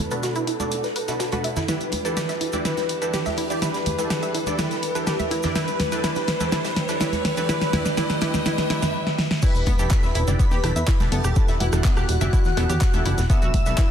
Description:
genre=progressive house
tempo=124 BPM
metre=4/4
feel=straight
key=E minor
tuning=A4 = 439 Hz
part: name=warm velvety synth lead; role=melody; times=0.0-13.9 s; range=F#4 to E5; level=-29 LUFS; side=left 1 dB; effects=chorus, sidechain pumping, ping-pong delay
part: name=supersaw stab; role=stabs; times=0.0-13.9 s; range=B2 to D5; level=-29 LUFS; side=right 1 dB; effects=vintage 12-bit sampler grit, sidechain pumping, ping-pong delay
part: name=riser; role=sound effects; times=0.0-8.9 s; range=none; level=-34 LUFS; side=left 1 dB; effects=none
part: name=analog pluck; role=arpeggios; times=0.1-13.8 s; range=B3 to E5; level=-30 LUFS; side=right 1 dB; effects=chorus, sidechain pumping, ping-pong delay
part: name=deep house drum kit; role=drums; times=0.1-13.9 s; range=crash cymbal, handclaps, hi-hat, rim click, snare drum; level=-27 LUFS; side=equal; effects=sidechain pumping on hats, sidechain pumping on cymbals
part: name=loose indie drum kit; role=drums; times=0.1-13.9 s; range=hi-hat, snare drum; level=-38 LUFS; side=right 2 dB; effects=none
part: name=cabasa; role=percussion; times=0.1-13.9 s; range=none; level=-39 LUFS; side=right 5 dB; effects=none
part: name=congas and bongos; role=percussion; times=0.6-13.8 s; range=none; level=-32 LUFS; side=right 3 dB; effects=sidechain pumping on perc
part: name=airy dreamy lead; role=second line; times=9.4-13.9 s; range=F#5 to E6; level=-32 LUFS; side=left 2 dB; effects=chorus, sidechain pumping, ping-pong delay
part: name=electronic kick drum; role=drums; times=9.4-13.9 s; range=none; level=-20 LUFS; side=equal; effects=none
part: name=plucky analog bass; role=bass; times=9.6-13.7 s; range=E1 to E2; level=-23 LUFS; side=equal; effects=sidechain pumping
room=light reverb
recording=dense, heavily limited modern master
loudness=-20 LUFS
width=side -9 dB against mid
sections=0.0-9.4 A section; 9.4-13.9 B section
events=build-up 0.0-9.4; riser 0.0-8.9; filter sweep on synth pluck 0.0-9.4; drum fill 1.7-8.9, 9.1-9.4; drop 9.4-13.9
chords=0.0 Bm7; 1.7 Em7; 13.3 Bm7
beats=0.23 0.72 1.20 | 1.69 2.17 2.65 3.14 | 3.62 4.10 4.59 5.07 | 5.56 6.04 6.52 7.01 | 7.49 7.97 8.46 8.94 | 9.43 9.91 10.39 10.88 | 11.36 11.85 12.33 12.81 | 13.30 13.78

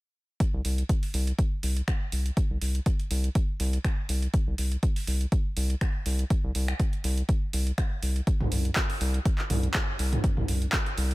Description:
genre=acid house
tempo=122 BPM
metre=4/4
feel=swing 55% on 16ths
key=unclear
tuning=A4 = 439 Hz
part: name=electronic kick drum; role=drums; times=0.4-10.8 s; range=none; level=-26 LUFS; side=equal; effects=overdrive
part: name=punchy analog drum machine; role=drums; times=0.4-11.1 s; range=finger snaps, handclaps, hi-hat, toms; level=-32 LUFS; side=right 1 dB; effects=overdrive
part: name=round analog bass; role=bass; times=0.5-11.1 s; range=C2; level=-26 LUFS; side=equal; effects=sidechain pumping
room=little or no reverb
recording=none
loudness=-25 LUFS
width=side -20 dB against mid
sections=0.4-11.1 A section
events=none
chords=none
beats=| 0.40 0.89 1.39 1.88 | 2.37 2.86 3.35 3.85 | 4.34 4.83 5.32 5.81 | 6.30 6.80 7.29 7.78 | 8.27 8.76 9.26 9.75 | 10.24 10.73

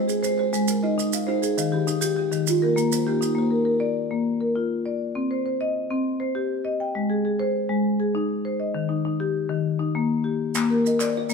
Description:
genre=southern african traditional, mbira-style interlocking cycle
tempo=134 BPM (dotted quarters)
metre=12/8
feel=straight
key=Bb mixolydian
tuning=A4 = 441 Hz
part: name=buzzing kalimba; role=arpeggios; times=0.0-3.7, 10.7-11.3 s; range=Eb3 to F5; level=-28 LUFS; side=right 8 dB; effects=none
part: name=marimba with medium mallets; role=arpeggios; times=0.0-11.3 s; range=Eb3 to G5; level=-22 LUFS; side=left 2 dB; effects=none
part: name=maracas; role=percussion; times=0.1-3.4, 10.5-11.3 s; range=none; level=-31 LUFS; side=right 9 dB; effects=none
part: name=group handclap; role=percussion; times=10.6-11.1 s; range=none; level=-32 LUFS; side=left 5 dB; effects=none
room=moderate large studio reverb, RT60 1.3 s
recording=band playing live in one room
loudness=-22 LUFS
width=side -5 dB against mid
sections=0.0-3.4 A section; 3.4-11.3 B section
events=none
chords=0.0 Ab; 1.6 Eb; 3.4 Bb; 5.2 Cm; 7.0 Ab; 8.8 Eb; 10.6 Bb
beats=0.23 0.68 1.12 | 1.57 2.02 2.47 2.92 | 3.37 3.81 4.26 4.71 | 5.16 5.61 6.06 6.51 | 6.96 7.41 7.86 8.31 | 8.76 9.21 9.66 10.11 | 10.56 11.01

